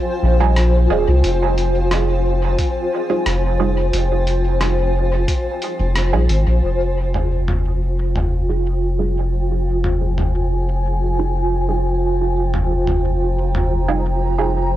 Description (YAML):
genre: ambient dub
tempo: 89 BPM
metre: 4/4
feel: straight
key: F minor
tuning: A4 = 444 Hz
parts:
  - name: granular cloud pad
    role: sustained chords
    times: 0.0-14.8 s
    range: F4 to Bb5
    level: -21 LUFS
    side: equal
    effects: built-in reverb, cassette tape
  - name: round analog bass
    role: bass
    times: 0.2-14.8 s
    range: Eb1 to C2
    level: -18 LUFS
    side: equal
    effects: none
  - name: filtered dub chord stab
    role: stabs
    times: 0.4-14.6 s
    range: G3 to Ab4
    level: -25 LUFS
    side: right 8 dB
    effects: phaser, lush chorus, vintage 12-bit sampler grit, cassette tape, dub echo
  - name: lo-fi sampler-style drum kit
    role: drums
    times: 0.6-13.7 s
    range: hi-hat, rim click, toms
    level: -25 LUFS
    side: equal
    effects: overdrive, cassette tape, dub echo
  - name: electronic kick drum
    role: drums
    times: 2.6-5.4 s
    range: none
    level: -22 LUFS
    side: equal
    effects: overdrive, cassette tape
room: little or no reverb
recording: home recording on cassette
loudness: -16 LUFS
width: side -13 dB against mid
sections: 0.0-6.6 A section; 6.6-14.8 B section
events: band accent 6.0-6.3; filter sweep on ambient pad 6.6-14.8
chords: 0.0 Fm9